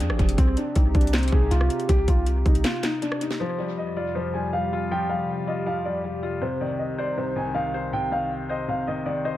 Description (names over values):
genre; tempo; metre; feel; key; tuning
hip hop, trap; 159 BPM; 4/4; half-time; C minor; A4 = 440 Hz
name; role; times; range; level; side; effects
dark concert grand piano; melody; 0.0-9.4 s; C4 to Ab5; -28 LUFS; equal; low-pass filter, tape echo
hollow soft pad; sustained chords; 0.0-9.4 s; C2 to Ab4; -32 LUFS; right 1 dB; chorus
warm 808-style bass; bass; 0.0-2.6 s; F1 to F2; -22 LUFS; equal; none
trap drum kit; drums; 0.0-3.4 s; handclaps, hi-hat, kick drum, rim click, snare drum; -23 LUFS; equal; tape echo
felt-muted upright piano; accompaniment; 3.4-9.4 s; C3 to C5; -29 LUFS; left 4 dB; low-pass filter
room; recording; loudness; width
light reverb, digital ambience; echo-heavy mix; -22 LUFS; side -14 dB against mid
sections
0.0-3.4 A section; 3.4-9.4 B section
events
break 2.6-3.4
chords
0.4 Cm; 3.4 Fsus2; 6.4 Cm